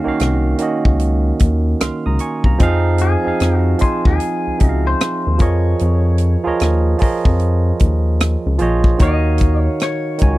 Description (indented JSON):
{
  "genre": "R&B, neo-soul",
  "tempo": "75 BPM",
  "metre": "4/4",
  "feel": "swing 63% on 16ths",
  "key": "Eb dorian",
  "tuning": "A4 = 439 Hz",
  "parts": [
    { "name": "clean electric guitar", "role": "melody", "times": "0.0-10.4 s", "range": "Gb4 to Eb5", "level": "-24 LUFS", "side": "left 6 dB", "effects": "none" },
    { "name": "barky tine electric piano", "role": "accompaniment", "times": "0.0-10.4 s", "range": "Eb3 to F6", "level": "-19 LUFS", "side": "right 3 dB", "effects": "none" },
    { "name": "rubbery square bass", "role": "bass", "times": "0.1-10.4 s", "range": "Bb1 to F2", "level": "-16 LUFS", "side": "equal", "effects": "none" },
    { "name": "tight funk drum kit", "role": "drums", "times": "0.2-10.4 s", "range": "hi-hat, kick drum, rim click", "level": "-15 LUFS", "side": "left 1 dB", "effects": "none" }
  ],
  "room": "little or no reverb",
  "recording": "dry, close 1970s-style studio recording",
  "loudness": "-14 LUFS",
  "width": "side -17 dB against mid",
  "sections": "0.0-9.0 A section; 9.0-10.4 B section",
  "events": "none",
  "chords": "0.0 Ebm9; 2.6 Fm7; 5.4 Bbm11; 9.0 Ebm9"
}